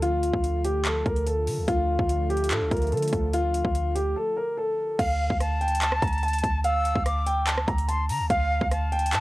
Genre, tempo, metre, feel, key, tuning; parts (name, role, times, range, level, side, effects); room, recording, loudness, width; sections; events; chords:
hip hop, trap; 145 BPM; 4/4; half-time; D minor; A4 = 440 Hz
dark baby grand piano; melody; 0.0-9.2 s; F4 to Bb5; -26 LUFS; equal; cassette tape
warm analog pad; sustained chords; 0.0-5.0 s; D3 to F4; -35 LUFS; right 1 dB; chorus, cassette tape
clean 808-style bass; bass; 0.0-9.2 s; D2 to D3; -27 LUFS; equal
trap drum kit; drums; 0.0-9.2 s; crash cymbal, handclaps, hi-hat, kick drum, rim click; -29 LUFS; equal; overdrive
breathy concert flute; second line; 5.0-9.2 s; F5 to E6; -30 LUFS; left 2 dB; cassette tape, tape echo
little or no reverb; home recording on cassette; -23 LUFS; side -18 dB against mid
0.0-5.0 A section; 5.0-9.2 B section
break 4.2-5.0
0.0 Dm